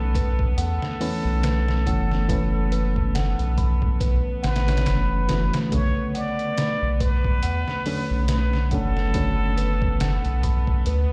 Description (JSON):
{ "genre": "trip hop", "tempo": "70 BPM", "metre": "4/4", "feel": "swing 57% on 16ths", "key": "B minor", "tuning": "A4 = 442 Hz", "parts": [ { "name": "trumpet with plunger mute", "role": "melody", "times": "0.0-11.0 s", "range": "A4 to D5", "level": "-33 LUFS", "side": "equal", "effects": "tape echo" }, { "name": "barky reed electric piano", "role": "accompaniment", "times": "0.0-11.1 s", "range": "C#3 to F#4", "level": "-31 LUFS", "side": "equal", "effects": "overdrive, fast tremolo, tape echo" }, { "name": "rich chamber string section", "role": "sustained chords", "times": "0.0-11.1 s", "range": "B3", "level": "-40 LUFS", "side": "equal", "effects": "vintage 12-bit sampler grit" }, { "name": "music box", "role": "arpeggios", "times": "0.0-11.0 s", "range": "B4 to B5", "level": "-37 LUFS", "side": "equal", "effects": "tape echo" }, { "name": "round analog bass", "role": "bass", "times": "0.0-11.1 s", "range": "F#1 to E2", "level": "-25 LUFS", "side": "equal", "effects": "none" }, { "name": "trip hop sampler-style drum kit", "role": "drums", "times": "0.1-11.1 s", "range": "hi-hat, kick drum, snare drum", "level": "-28 LUFS", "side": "equal", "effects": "overdrive" } ], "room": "studio reverb", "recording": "played on a big sound system in a bare room, large studio reverb", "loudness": "-23 LUFS", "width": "mono", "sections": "0.0-11.1 A section", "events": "none", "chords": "0.0 Aadd9; 5.7 Bm9", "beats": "0.57 1.43 | 2.29 3.15 4.00 4.86 | 5.72 6.58 7.43 8.29 | 9.15 10.00 10.86" }